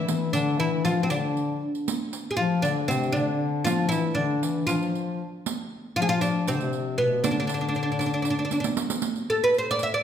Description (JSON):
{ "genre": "Turkish makam ensemble", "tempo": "235 BPM (eighths)", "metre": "7/8", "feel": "straight", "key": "D makam nikriz", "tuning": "A4 = 436 Hz", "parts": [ { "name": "oud", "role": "melody", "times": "0.0-10.0 s", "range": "B3 to E5", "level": "-25 LUFS", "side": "right 1 dB", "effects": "none" }, { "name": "mellow bass clarinet", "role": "second line", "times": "0.0-8.8 s", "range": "B2 to F3+25c", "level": "-27 LUFS", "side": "left 5 dB", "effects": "none" }, { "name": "riq", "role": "percussion", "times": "0.1-9.9 s", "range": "none", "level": "-32 LUFS", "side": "right 6 dB", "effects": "none" } ], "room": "wet recital hall reverb, RT60 1.5 s", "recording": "recorded in a church or concert hall", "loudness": "-23 LUFS", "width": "side -9 dB against mid", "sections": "0.0-9.0 A section; 9.0-10.0 B section", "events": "drum fill 8.5-9.0", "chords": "none", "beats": "| 0.08 0.34 0.59 0.85 1.10 1.36 1.61 | 1.87 2.12 2.38 2.64 2.89 3.15 3.40 | 3.66 3.91 4.17 4.42 4.68 4.93 5.19 | 5.45 5.70 5.96 6.21 6.47 6.72 6.98 | 7.23 7.49 7.75 8.00 8.26 8.51 8.77 | 9.02 9.28 9.54 9.79" }